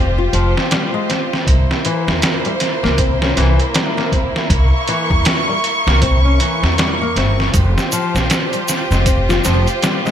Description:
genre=trip hop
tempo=79 BPM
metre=4/4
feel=swing 60% on 16ths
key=unclear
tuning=A4 = 441 Hz
part: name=warm studio violin section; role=sustained chords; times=0.0-10.1 s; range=Bb3 to Db6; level=-20 LUFS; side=right 1 dB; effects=none
part: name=nylon-string guitar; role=arpeggios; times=0.0-10.1 s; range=E3 to F4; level=-22 LUFS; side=left 4 dB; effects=vintage 12-bit sampler grit, ping-pong delay
part: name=upright bass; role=bass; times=0.0-9.6 s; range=F1 to E2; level=-16 LUFS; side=equal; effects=none
part: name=trip hop sampler-style drum kit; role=drums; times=0.3-10.1 s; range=hi-hat, kick drum, snare drum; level=-17 LUFS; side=right 1 dB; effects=overdrive
part: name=egg shaker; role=percussion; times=7.5-10.1 s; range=none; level=-27 LUFS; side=equal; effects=none
room=light reverb, small room ambience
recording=bright 1980s-style digital production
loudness=-13 LUFS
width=side -9 dB against mid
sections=0.0-10.1 A section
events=none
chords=0.0 Fsus2; 1.5 C7b9; 7.5 Fsus2

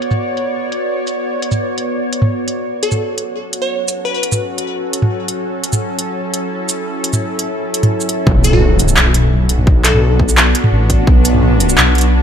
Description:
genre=half-time drum and bass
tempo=171 BPM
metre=4/4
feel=half-time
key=B minor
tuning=A4 = 436 Hz
part: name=bowed-like drone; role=sustained chords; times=0.0-12.2 s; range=F#3 to D5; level=-19 LUFS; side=right 1 dB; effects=built-in reverb, sidechain pumping
part: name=organic electronic drum kit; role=drums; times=0.0-12.0 s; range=handclaps, hi-hat, shaker, toms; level=-15 LUFS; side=right 1 dB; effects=low-pass filter on hats, low-pass filter on perc, low-pass filter on toms, low-pass filter on snare
part: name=glassy wavetable pluck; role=melody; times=2.8-4.2, 8.4-10.1 s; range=F#4 to C#5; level=-20 LUFS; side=left 1 dB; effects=chorus, cassette tape, digital delay
part: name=dark detuned saw bass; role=bass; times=8.3-12.2 s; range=A1 to B1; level=-13 LUFS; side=equal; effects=none
part: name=electronic kick drum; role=drums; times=8.3-11.1 s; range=none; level=-12 LUFS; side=equal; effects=none
part: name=impact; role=sound effects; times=8.3-9.7 s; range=none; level=-19 LUFS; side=equal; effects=none
room=light reverb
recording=none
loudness=-13 LUFS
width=side -8 dB against mid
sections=0.0-8.3 A section; 8.3-12.2 B section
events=filter sweep on drum 0.0-8.3; drop 8.3-12.2; impact 8.3-9.7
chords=0.0 Bm; 2.7 F#m; 8.3 Bm

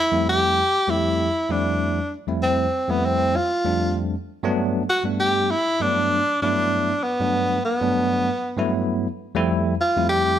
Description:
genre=jazz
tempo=98 BPM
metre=4/4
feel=straight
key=G major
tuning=A4 = 440 Hz
part: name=clear tenor saxophone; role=melody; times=0.0-10.4 s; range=B3 to G4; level=-20 LUFS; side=equal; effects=none
part: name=barky tine electric piano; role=accompaniment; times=0.1-10.4 s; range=F2 to G4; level=-23 LUFS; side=equal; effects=medium stereo tremolo
room=moderate large studio reverb, RT60 1.0 s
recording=none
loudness=-19 LUFS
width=side -10 dB against mid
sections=0.0-10.4 A section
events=none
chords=0.0 Fmaj9; 4.3 Gmaj9; 9.2 Fmaj9

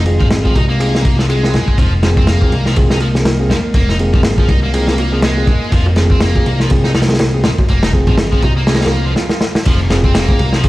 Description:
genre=breakbeat, breaks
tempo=122 BPM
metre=4/4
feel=swing 57% on 16ths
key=F minor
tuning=A4 = 440 Hz
part: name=dark analog pad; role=sustained chords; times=0.0-10.7 s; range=Ab3 to Bb4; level=-25 LUFS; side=equal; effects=chorus, sidechain pumping
part: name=distorted electric guitar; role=riff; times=0.0-10.6 s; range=F3 to Eb4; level=-22 LUFS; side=equal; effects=overdrive, tube saturation, digital delay
part: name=fat analog bass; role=bass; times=0.0-10.7 s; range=F1 to C2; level=-15 LUFS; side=equal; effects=tube saturation
part: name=mellow tine electric piano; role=stabs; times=0.1-10.7 s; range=C4 to Ab4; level=-21 LUFS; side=right 1 dB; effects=vintage 12-bit sampler grit, low-pass filter, digital delay
part: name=crunchy breakbeat drum kit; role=drums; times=0.1-10.7 s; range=crash cymbal, kick drum, ride cymbal, snare drum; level=-14 LUFS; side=equal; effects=none
part: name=congas and bongos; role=percussion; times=0.1-9.0 s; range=none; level=-25 LUFS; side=right 1 dB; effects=none
part: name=swell and impact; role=sound effects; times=8.9-10.7 s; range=none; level=-25 LUFS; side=equal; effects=none
room=light reverb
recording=played on a big sound system in a bare room, stone room reverb, vinyl crackle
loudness=-11 LUFS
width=side -18 dB against mid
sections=0.0-9.7 A section; 9.7-10.7 B section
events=swell 8.9-9.7; drum fill 9.2-9.7; stop 9.2-9.7; drop 9.7-10.7; impact 9.7-10.7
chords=0.0 Fm

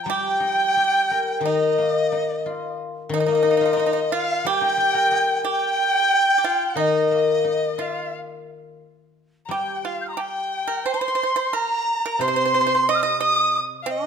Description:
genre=chinese traditional, Chinese chamber ensemble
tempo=89 BPM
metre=4/4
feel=rubato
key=G jue mode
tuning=A4 = 438 Hz
part: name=mellow hollow dizi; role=melody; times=0.0-14.1 s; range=Eb5 to G6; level=-22 LUFS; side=right 2 dB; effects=none
part: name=pipa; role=second line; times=0.0-14.1 s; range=Eb4 to Eb5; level=-27 LUFS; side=right 7 dB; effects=none
part: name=warm erhu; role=second line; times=0.0-14.1 s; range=Eb5 to Eb6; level=-26 LUFS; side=left 6 dB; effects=none
part: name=guzheng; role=accompaniment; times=0.0-14.1 s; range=C3 to Eb5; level=-24 LUFS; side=left 5 dB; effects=none
room=moderate recital hall reverb, RT60 1.6 s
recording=close, detailed microphones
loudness=-19 LUFS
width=side -7 dB against mid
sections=0.0-14.1 A section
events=none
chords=none

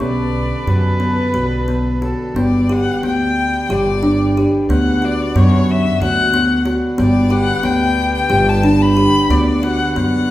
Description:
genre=contemporary instrumental, chamber music in an uneven meter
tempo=181 BPM (eighths)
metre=7/8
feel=straight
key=unclear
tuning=A4 = 442 Hz
part: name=rich violin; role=melody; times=0.0-10.3 s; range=B4 to B5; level=-20 LUFS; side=left 4 dB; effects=none
part: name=warm viola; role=second line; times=0.0-2.3 s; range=A4 to B4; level=-25 LUFS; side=right 1 dB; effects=none
part: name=pedal harmonium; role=sustained chords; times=0.0-10.3 s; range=D3 to A4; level=-25 LUFS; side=equal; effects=none
part: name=kalimba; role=arpeggios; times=0.0-10.3 s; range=B3 to G4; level=-17 LUFS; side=equal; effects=none
part: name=upright bass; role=bass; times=0.0-10.3 s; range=G1 to F#2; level=-18 LUFS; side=equal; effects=none
room=wet recital hall reverb, RT60 1.3 s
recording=heard from further back in the room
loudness=-13 LUFS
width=side -14 dB against mid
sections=0.0-2.4 A section; 2.4-10.3 B section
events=none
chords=0.0 Bm7; 2.4 G; 4.7 Bm/D; 7.0 G; 9.3 Bm/D

